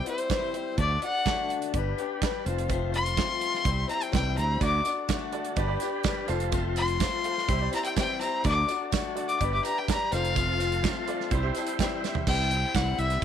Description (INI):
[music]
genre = folk rock and heartland rock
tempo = 125 BPM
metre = 4/4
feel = straight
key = unclear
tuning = A4 = 440 Hz
[part]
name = clear fiddle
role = melody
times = 0.0-13.2 s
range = C5 to D6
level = -28 LUFS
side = left 2 dB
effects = none
[part]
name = picked swing-style acoustic guitar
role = accompaniment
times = 0.0-13.2 s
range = C3 to D5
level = -32 LUFS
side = left 10 dB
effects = none
[part]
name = tonewheel organ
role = sustained chords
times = 0.0-13.2 s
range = C4 to C5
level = -39 LUFS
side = right 2 dB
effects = slow rotary speaker
[part]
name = natural country drum kit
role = drums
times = 0.1-13.2 s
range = crash cymbal, hi-hat, kick drum, snare drum, toms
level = -30 LUFS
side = right 4 dB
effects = none
[part]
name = modern bright fingered electric bass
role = bass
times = 0.8-13.2 s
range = F1 to D2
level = -29 LUFS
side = right 1 dB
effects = none
[part]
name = bright upright piano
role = accompaniment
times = 4.6-13.1 s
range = E4 to A5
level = -37 LUFS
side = right 11 dB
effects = none
[part]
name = tambourine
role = percussion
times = 4.6-12.9 s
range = none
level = -43 LUFS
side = right 14 dB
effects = none
[sound]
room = light reverb, small room ambience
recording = 1960s-style stereo with parts hard left and right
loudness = -25 LUFS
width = side -9 dB against mid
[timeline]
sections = 0.0-12.3 A section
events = fiddle solo 0.0-12.3; upright piano fill 11.3-12.3; drum fill 12.0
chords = 0.0 C; 0.8 D; 1.7 G; 2.5 F; 3.7 C; 4.6 D; 5.6 G; 6.3 F; 7.5 C; 8.4 D; 9.4 G; 10.1 F; 11.3 C